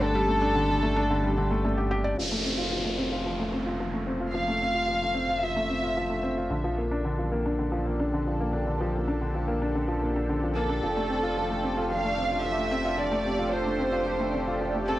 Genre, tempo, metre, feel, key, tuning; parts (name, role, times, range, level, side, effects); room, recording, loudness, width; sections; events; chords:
piano and strings electronica; 111 BPM; 4/4; straight; F major; A4 = 440 Hz
warm chamber violin section; melody; 0.0-6.2, 10.5-15.0 s; A4 to F5; -28 LUFS; right 1 dB; cassette tape, tape echo
lush unison pad; sustained chords; 0.0-15.0 s; D4 to A5; -34 LUFS; equal; chorus, phaser, cassette tape
felt-muted upright piano; riff; 0.0-15.0 s; D3 to D5; -28 LUFS; left 1 dB; low-pass filter, cassette tape, tape echo
warm sub bass; bass; 0.0-15.0 s; F1 to Bb1; -33 LUFS; equal; tube saturation
downlifter; sound effects; 2.2-6.5 s; -33 LUFS; equal
moderate studio reverb, RT60 0.5 s; home recording on cassette; -25 LUFS; side -15 dB against mid
0.0-2.2 A section; 2.2-15.0 B section
fade-in on analog synth pad 2.2-15.0; filter sweep on felt piano 2.2-15.0
0.0 Gsus2; 2.2 F; 6.5 Bb; 10.8 F